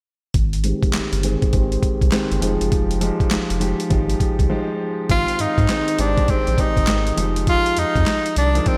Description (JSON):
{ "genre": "R&B, new jack swing", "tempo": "101 BPM", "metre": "4/4", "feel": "swing 64% on 16ths", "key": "unclear", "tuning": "A4 = 439 Hz", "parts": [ { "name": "round analog bass", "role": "bass", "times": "0.3-8.7 s", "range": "F1 to Ab2", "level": "-24 LUFS", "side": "equal", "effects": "none" }, { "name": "boom bap sampler-style drum kit", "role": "drums", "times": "0.3-8.8 s", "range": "handclaps, hi-hat, kick drum, snare drum", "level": "-23 LUFS", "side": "equal", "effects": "none" }, { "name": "warm grand piano", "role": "accompaniment", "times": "0.6-8.8 s", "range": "Eb3 to Bb4", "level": "-26 LUFS", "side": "equal", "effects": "low-pass filter" }, { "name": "clear tenor saxophone", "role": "melody", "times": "5.1-8.8 s", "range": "C4 to F4", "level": "-22 LUFS", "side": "equal", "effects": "none" } ], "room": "moderate lush hall reverb, RT60 2.0 s", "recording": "big arena sound", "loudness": "-19 LUFS", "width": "mono", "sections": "0.3-5.1 A section; 5.1-8.8 B section", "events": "filter sweep on grand piano 0.3-5.1; break 4.5-5.1", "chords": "0.3 Abmaj7; 2.4 Fm9; 5.1 Abmaj7; 7.2 Fm9" }